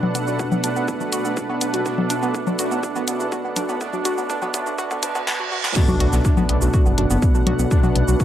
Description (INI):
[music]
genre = melodic techno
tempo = 123 BPM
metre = 4/4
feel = straight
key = B minor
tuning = A4 = 440 Hz
[part]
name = lush unison pad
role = sustained chords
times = 0.0-8.2 s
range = D4 to F#5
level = -30 LUFS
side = equal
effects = chorus, sidechain pumping
[part]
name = woody wave-folded pluck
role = arpeggios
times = 0.0-8.2 s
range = B3 to F#4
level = -26 LUFS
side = right 1 dB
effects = chorus, sidechain pumping, analog delay
[part]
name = analog synth brass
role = stabs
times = 0.0-8.2 s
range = B2 to D4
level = -26 LUFS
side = right 2 dB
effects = chorus, sidechain pumping, tape echo
[part]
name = dark detuned saw bass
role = bass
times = 0.0-8.2 s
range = F#1 to D2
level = -24 LUFS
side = equal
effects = none
[part]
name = punchy analog drum machine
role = drums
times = 0.0-8.2 s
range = congas, crash cymbal, hi-hat, shaker, snare drum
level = -25 LUFS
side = left 2 dB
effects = tape echo
[part]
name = deep dark ambient pad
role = texture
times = 0.4-8.2 s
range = B3 to B4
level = -34 LUFS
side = left 2 dB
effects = none
[part]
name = electronic kick drum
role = drums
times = 0.4-8.2 s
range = none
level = -20 LUFS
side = equal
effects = high-pass filter on kick, high-pass filter on room
[part]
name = reverse cymbal and impact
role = sound effects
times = 5.1-7.7 s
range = none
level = -28 LUFS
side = right 1 dB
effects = none
[sound]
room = moderate spring reverb, RT60 1.8 s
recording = echo-heavy mix, high-pass filter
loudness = -18 LUFS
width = side -11 dB against mid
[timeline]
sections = 0.0-5.8 A section; 5.8-8.2 B section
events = build-up 0.0-5.8; filter sweep 0.0-5.8; drum fill 1.9-5.3, 5.3-5.8; reverse cymbal 5.1-5.8; drop 5.8-8.2; impact 5.8-7.7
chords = 0.0 Bm7